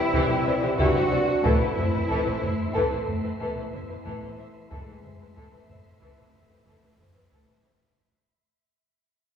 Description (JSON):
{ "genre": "cinematic, suspense film score", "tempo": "92 BPM", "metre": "5/4", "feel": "straight", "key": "unclear", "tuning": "A4 = 438 Hz", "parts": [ { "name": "muted symphonic violin section", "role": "melody", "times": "0.0-7.7 s", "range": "G4 to E5", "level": "-32 LUFS", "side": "left 3 dB", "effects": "none" }, { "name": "muted studio violin section", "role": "second line", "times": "0.0-7.7 s", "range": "E4 to C5", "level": "-31 LUFS", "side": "left 2 dB", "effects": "none" }, { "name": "muted symphonic viola section", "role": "accompaniment", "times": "0.0-7.7 s", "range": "E3", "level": "-33 LUFS", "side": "equal", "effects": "none" }, { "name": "mellow French horn section", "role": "sustained chords", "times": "0.0-7.3 s", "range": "E3 to D4", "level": "-34 LUFS", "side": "right 1 dB", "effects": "none" }, { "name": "wind-like tuned noise texture", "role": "sustained chords", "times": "0.0-7.9 s", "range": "D5 to C6", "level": "-37 LUFS", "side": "right 2 dB", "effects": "built-in reverb" }, { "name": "muted symphonic cello section", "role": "bass", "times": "0.0-7.3 s", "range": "B3 to F#4", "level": "-29 LUFS", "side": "right 1 dB", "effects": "none" }, { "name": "muted symphonic double bass section", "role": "bass", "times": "0.0-7.7 s", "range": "A1 to C2", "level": "-32 LUFS", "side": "right 1 dB", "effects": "none" }, { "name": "muted symphonic cello section", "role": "riff", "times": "0.1-7.8 s", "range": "A2 to C4", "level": "-33 LUFS", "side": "left 1 dB", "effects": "none" }, { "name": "taiko ensemble", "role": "drums", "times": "0.1-7.9 s", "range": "none", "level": "-30 LUFS", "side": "equal", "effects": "none" } ], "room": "wet scoring stage reverb, RT60 1.7 s", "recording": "heard from further back in the room, small room ambience", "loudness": "-22 LUFS", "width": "side -8 dB against mid", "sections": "0.0-8.0 A section", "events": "fade-out 0.0-8.0", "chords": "0.0 Cadd9; 1.4 Amadd9" }